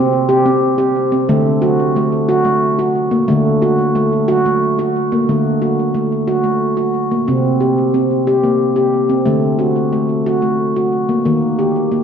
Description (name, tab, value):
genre	world meditative, meditative tuned percussion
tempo	60 BPM (dotted quarters)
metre	6/8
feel	straight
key	D phrygian dominant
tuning	A4 = 438 Hz
part	handpan	solo	0.0-12.0 s	C3 to G4	-13 LUFS	equal	ping-pong delay
room	wet scoring stage reverb, RT60 1.8 s, studio reverb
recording	dark, warm production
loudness	-13 LUFS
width	side -7 dB against mid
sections	0.0-5.3 A section; 5.3-12.0 B section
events	none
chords	0.0 C5; 1.3 D; 7.3 C5; 9.3 D; 11.3 Eb